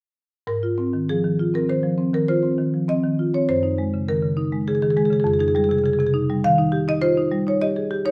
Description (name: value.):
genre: classical, contemporary piece for solo marimba.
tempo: 101 BPM.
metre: 5/4.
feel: rubato.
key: Ab major.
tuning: A4 = 442 Hz.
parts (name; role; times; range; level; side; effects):
marimba with medium hard mallets; solo; 0.5-8.1 s; F2 to F5; -21 LUFS; equal; none.
room: moderate stone room reverb, RT60 1.1 s.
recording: none.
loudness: -21 LUFS.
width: mono.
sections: 0.5-8.1 A section.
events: none.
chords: 0.5 Ab69; 3.5 Gb69; 5.3 Fm9; 6.4 Eb69.